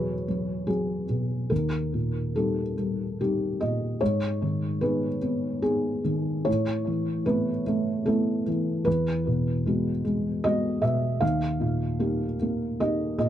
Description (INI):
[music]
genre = neoclassical minimalist piano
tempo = 74 BPM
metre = 3/4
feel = rubato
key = unclear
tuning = A4 = 439 Hz
[part]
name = felt-muted upright piano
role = solo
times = 0.0-13.3 s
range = D#2 to F5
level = -24 LUFS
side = equal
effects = tape echo
[sound]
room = moderate booth ambience, RT60 0.2 s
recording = dry, close 1970s-style studio recording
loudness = -24 LUFS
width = side -11 dB against mid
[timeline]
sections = 0.0-13.3 A section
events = none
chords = 0.0 Eadd9; 1.5 D#; 4.0 G#m; 6.5 Aadd9; 8.9 Eadd9; 11.2 D#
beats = 0.69 | 1.51 2.35 3.19 | 4.00 4.82 5.63 | 6.47 7.27 8.07 | 8.87 9.65 10.44 | 11.22 12.01 12.80